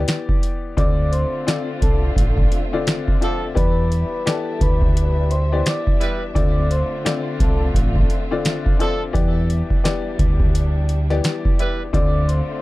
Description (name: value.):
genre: hip hop, boom-bap hip-hop.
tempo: 86 BPM.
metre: 4/4.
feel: swing 59% on 16ths.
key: D dorian.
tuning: A4 = 440 Hz.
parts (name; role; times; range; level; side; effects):
clear upright piano; accompaniment; 0.0-12.6 s; D3 to D5; -26 LUFS; left 5 dB; cassette tape, high-pass filter, low-pass filter.
deep dub fingered electric bass; bass; 0.0-12.4 s; A1 to E2; -19 LUFS; equal; none.
booming analog drum machine; drums; 0.1-12.5 s; hi-hat, kick drum, snare drum; -20 LUFS; equal; none.
vibraphone with soft mallets; melody; 0.8-7.6, 11.9-12.6 s; A4 to D6; -27 LUFS; equal; high-pass filter, low-pass filter, digital delay.
warm studio string section; sustained chords; 0.8-12.6 s; D3 to E5; -31 LUFS; equal; high-pass filter, low-pass filter.
warm horn section; stabs; 3.2-11.8 s; F3 to B4; -27 LUFS; right 2 dB; high-pass filter, low-pass filter, digital delay.
room: little or no reverb.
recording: dark, warm production.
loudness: -17 LUFS.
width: side -19 dB against mid.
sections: 0.8-12.6 A section.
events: none.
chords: 0.0 Em7; 0.8 Dm7; 3.6 Em7; 6.4 Dm7; 9.1 Em7; 11.9 Dm7.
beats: 0.08 | 0.78 1.47 2.17 2.87 | 3.57 4.26 4.96 5.66 | 6.36 7.05 7.75 8.45 | 9.15 9.85 10.54 11.24 | 11.94.